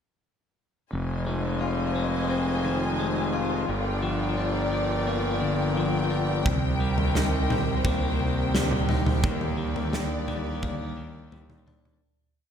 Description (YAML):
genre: post-rock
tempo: 86 BPM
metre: 4/4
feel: straight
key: F dorian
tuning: A4 = 441 Hz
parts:
  - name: rich studio string section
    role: sustained chords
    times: 0.9-12.0 s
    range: Eb3 to Ab5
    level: -31 LUFS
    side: left 1 dB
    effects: none
  - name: clean electric guitar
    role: arpeggios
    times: 0.9-12.0 s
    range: F2 to F4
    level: -29 LUFS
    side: left 4 dB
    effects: ping-pong delay
  - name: fuzz fingered electric bass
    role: bass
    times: 0.9-12.0 s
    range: F1 to Eb2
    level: -29 LUFS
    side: right 1 dB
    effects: overdrive
  - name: big rock drum kit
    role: drums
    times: 6.5-12.0 s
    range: kick drum, snare drum, toms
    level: -26 LUFS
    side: right 1 dB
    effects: none
room: moderate plate reverb, RT60 2.6 s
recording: dreamy mix soaked in reverb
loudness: -24 LUFS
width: side -8 dB against mid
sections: 0.9-12.0 A section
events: fade-out 9.2-12.0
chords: 0.9 Fm7; 3.7 Gm7; 6.5 Cm7; 9.2 Ebmaj7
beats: | 0.93 1.62 2.31 3.00 | 3.70 4.39 5.08 5.77 | 6.47 7.16 7.86 8.55 | 9.25 9.94 10.64 11.33